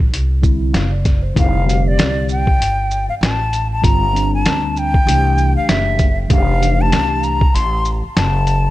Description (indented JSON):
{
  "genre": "hip hop, jazz-hop",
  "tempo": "97 BPM",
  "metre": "4/4",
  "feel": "swing 58% on 16ths",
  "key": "F major",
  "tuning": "A4 = 439 Hz",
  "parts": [
    { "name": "upright bass", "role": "bass", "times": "0.0-8.7 s", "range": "F1 to D2", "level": "-17 LUFS", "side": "equal", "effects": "none" },
    { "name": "lo-fi sampler-style drum kit", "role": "drums", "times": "0.1-8.6 s", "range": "hi-hat, kick drum, shaker, snare drum", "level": "-16 LUFS", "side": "equal", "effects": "vintage 12-bit sampler grit" },
    { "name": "mellow tine electric piano", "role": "accompaniment", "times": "0.4-7.4 s", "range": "D3 to F5", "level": "-23 LUFS", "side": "equal", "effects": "medium stereo tremolo" },
    { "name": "breathy silver concert flute", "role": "melody", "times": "1.4-8.7 s", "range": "D5 to C6", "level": "-19 LUFS", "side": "left 2 dB", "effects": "analog delay" }
  ],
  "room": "little or no reverb",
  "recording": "none",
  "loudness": "-13 LUFS",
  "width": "side -16 dB against mid",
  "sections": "0.0-1.4 A section; 1.4-8.7 B section",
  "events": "none",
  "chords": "0.0 Fmaj7sus2; 1.4 Fadd9; 3.8 G5; 5.1 C69; 6.3 Fmaj9"
}